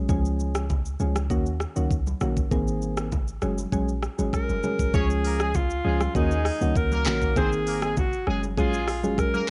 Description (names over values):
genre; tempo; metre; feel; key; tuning
afrobeats; 99 BPM; 4/4; straight; Db major; A4 = 440 Hz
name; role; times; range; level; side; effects
soft electric-piano-like synth keys; accompaniment; 0.0-9.5 s; Eb3 to Ab4; -30 LUFS; equal; chorus, cassette tape
clean 808-style bass; bass; 0.1-9.3 s; Gb1 to Eb2; -30 LUFS; equal; none
afro-pop drum kit; drums; 0.1-9.5 s; handclaps, hi-hat, kick drum, rim click, shaker; -30 LUFS; equal; cassette tape
congas; percussion; 0.1-9.5 s; none; -39 LUFS; equal; none
breathy alto saxophone; melody; 4.3-9.5 s; Eb4 to Bb4; -31 LUFS; equal; cassette tape
bright horn section; second line; 4.9-9.5 s; Ab3 to Db5; -36 LUFS; equal; cassette tape
room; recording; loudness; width
studio reverb; home recording on cassette, nothing above 11.0 kHz; -25 LUFS; mono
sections
0.0-4.9 A section; 4.9-9.5 B section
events
none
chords
0.1 Db; 1.3 Ebm7; 2.5 Abadd9; 3.4 Gbsus2; 4.9 Db; 6.2 Ebm7; 7.4 Abadd9; 8.3 Gbsus2